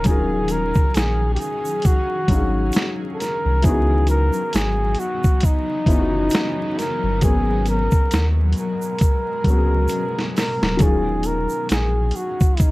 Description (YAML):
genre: lo-fi hip hop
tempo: 67 BPM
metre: 4/4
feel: swing 57% on 16ths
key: Eb minor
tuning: A4 = 440 Hz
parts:
  - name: breathy flugelhorn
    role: melody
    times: 0.0-12.7 s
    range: Eb4 to Bb4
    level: -24 LUFS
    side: equal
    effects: low-pass filter, plate reverb
  - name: felt-muted upright piano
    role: accompaniment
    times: 0.0-12.7 s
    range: Eb3 to F5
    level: -26 LUFS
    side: left 2 dB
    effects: cassette tape, low-pass filter, plate reverb
  - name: granular cloud pad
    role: sustained chords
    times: 0.0-12.7 s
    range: Cb3 to F5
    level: -29 LUFS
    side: left 1 dB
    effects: built-in reverb, low-pass filter, plate reverb
  - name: warm sub bass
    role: bass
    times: 0.0-12.1 s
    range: D1 to Eb2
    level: -21 LUFS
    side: equal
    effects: none
  - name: dusty soul sampler-style drum kit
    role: drums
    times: 0.0-12.7 s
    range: hi-hat, kick drum, snare drum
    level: -18 LUFS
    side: equal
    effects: none
  - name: egg shaker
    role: percussion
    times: 0.1-12.7 s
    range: none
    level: -39 LUFS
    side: right 6 dB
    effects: none
room: light reverb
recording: vinyl crackle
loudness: -17 LUFS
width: side -20 dB against mid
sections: 0.0-12.7 A section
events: drum fill 9.9-10.8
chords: 0.0 Ebm11; 3.6 Dbm11; 7.2 Abm11; 10.8 Ebm11